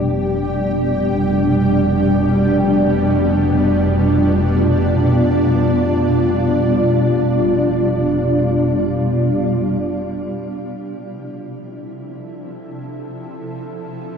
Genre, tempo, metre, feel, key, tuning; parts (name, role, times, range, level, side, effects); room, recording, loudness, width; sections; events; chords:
ambient; free time; F lydian; A4 = 440 Hz
shimmering ambient pad; sustained chords; 0.0-14.2 s; B2 to A4; -16 LUFS; equal; chorus, built-in reverb, shimmer reverb
rich symphonic double bass section; bass; 0.0-9.8 s; F1; -23 LUFS; equal
wet huge ambient reverb, RT60 7.3 s; dreamy mix soaked in reverb; -14 LUFS; side -6 dB against mid
0.0-9.8 A section; 9.8-14.2 B section
0.0 G/F; 9.8 Fmaj7